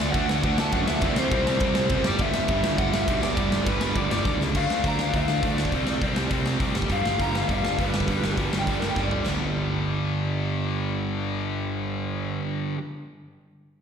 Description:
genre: punk rock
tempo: 204 BPM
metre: 4/4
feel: straight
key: unclear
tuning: A4 = 440 Hz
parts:
  - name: overdriven semi-hollow guitar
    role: melody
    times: 0.0-9.3 s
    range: Bb4 to Bb5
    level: -28 LUFS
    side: equal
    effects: slapback echo
  - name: sludgy distorted guitar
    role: riff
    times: 0.0-12.8 s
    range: G2 to D4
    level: -30 LUFS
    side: right 9 dB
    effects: overdrive
  - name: tight distorted guitar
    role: riff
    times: 0.0-12.8 s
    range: G2 to D4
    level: -30 LUFS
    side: left 13 dB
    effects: distortion
  - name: fuzz picked electric bass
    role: bass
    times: 0.0-12.4 s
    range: F#1 to F#2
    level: -28 LUFS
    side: equal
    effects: overdrive
  - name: big rock drum kit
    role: drums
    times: 0.0-9.3 s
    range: china cymbal, crash cymbal, hi-hat, kick drum, snare drum, toms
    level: -27 LUFS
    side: equal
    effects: none
room: light reverb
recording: live gig heard through the venue's PA, recital hall reverb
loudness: -22 LUFS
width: side -7 dB against mid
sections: 0.0-4.6 A section; 4.6-9.3 B section; 9.3-11.6 C section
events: drum fill 4.3, 9.0; overdriven electric guitar solo 4.6-9.3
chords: 0.0 D; 1.0 C5; 2.1 G5; 4.6 D5; 5.7 C5; 6.8 G5

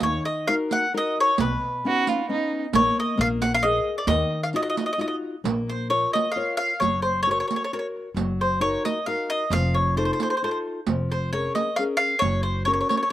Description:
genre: italian folk, Italian serenade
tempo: 133 BPM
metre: 3/4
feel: straight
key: Eb minor, Bb minor from 5.5 s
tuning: A4 = 440 Hz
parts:
  - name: mandolin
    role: melody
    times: 0.0-13.1 s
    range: B4 to Gb5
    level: -23 LUFS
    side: left 1 dB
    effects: slapback echo
  - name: nylon-string guitar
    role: accompaniment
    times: 0.0-13.0 s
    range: B2 to F5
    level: -28 LUFS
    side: left 3 dB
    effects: none
  - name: upright bass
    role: bass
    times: 0.0-12.8 s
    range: F1 to Eb2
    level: -28 LUFS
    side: right 1 dB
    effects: none
  - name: riq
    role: percussion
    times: 0.0-13.1 s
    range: none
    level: -29 LUFS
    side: right 8 dB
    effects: slapback echo
  - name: dark violin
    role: second line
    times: 1.9-2.6 s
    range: D#4 to F#4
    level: -26 LUFS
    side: right 5 dB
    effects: slapback echo
room: little or no reverb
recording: recorded outdoors, with no room sound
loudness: -21 LUFS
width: side -13 dB against mid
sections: 0.0-5.5 A section; 5.5-13.1 B section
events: none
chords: 0.0 Ebm; 1.4 Badd9; 2.7 Eb5/Bb; 3.2 Bb5; 4.1 Ebmadd9; 5.5 Bbm; 6.8 Gb; 8.2 Ebm/Gb; 9.5 F7; 10.9 Bbm7/F; 12.2 Gb

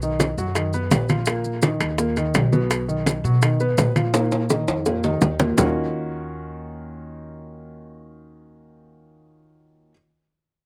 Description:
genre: Afro-Cuban jazz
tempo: 167 BPM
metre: 4/4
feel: straight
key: Eb minor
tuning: A4 = 440 Hz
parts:
  - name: warm concert grand piano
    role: accompaniment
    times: 0.0-9.9 s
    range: Bb2 to B4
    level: -28 LUFS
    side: equal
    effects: none
  - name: upright bass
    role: bass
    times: 0.0-9.9 s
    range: A#1 to B2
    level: -28 LUFS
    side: equal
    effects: none
  - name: congas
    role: percussion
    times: 0.0-5.7 s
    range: none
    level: -26 LUFS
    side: equal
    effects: none
  - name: maracas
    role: percussion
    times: 0.0-5.7 s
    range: none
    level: -35 LUFS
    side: equal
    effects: none
  - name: bongos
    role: percussion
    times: 0.2-5.7 s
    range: none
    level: -26 LUFS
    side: equal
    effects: none
  - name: timbales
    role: percussion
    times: 0.2-5.7 s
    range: none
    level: -29 LUFS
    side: equal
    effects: slapback echo
room: little or no reverb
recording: recorded outdoors, with no room sound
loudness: -21 LUFS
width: mono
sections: 0.0-5.6 A section; 5.6-8.5 B section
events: drum fill 4.1-5.6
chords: 0.0 Bmaj7; 1.3 Bbsus4; 2.7 Bmaj7; 4.1 Bbsus4; 5.6 Ebm9

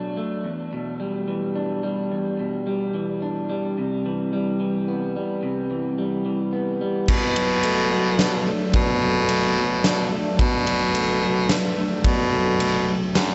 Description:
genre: post-rock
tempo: 109 BPM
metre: 3/4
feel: straight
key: unclear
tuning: A4 = 441 Hz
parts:
  - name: electric guitar through a small old amp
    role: arpeggios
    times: 0.0-13.3 s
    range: E2 to D4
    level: -26 LUFS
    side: equal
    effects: diffuse ambient delay
  - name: vibraphone with medium hard mallets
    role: arpeggios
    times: 7.1-13.3 s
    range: A4 to D5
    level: -33 LUFS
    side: equal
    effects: diffuse ambient delay
  - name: growling baritone saxophone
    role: bass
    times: 7.1-13.3 s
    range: F#2 to B2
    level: -24 LUFS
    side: equal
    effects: none
  - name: huge arena drum kit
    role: drums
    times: 7.1-13.3 s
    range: crash cymbal, kick drum, ride cymbal, snare drum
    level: -26 LUFS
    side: equal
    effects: none
room: wet huge ambient reverb, RT60 8.1 s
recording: dreamy mix soaked in reverb, nothing above 7.9 kHz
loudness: -23 LUFS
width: mono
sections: 0.0-7.1 A section; 7.1-13.3 A section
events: none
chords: 0.5 Em7; 3.8 Cmaj7; 7.1 Bm7

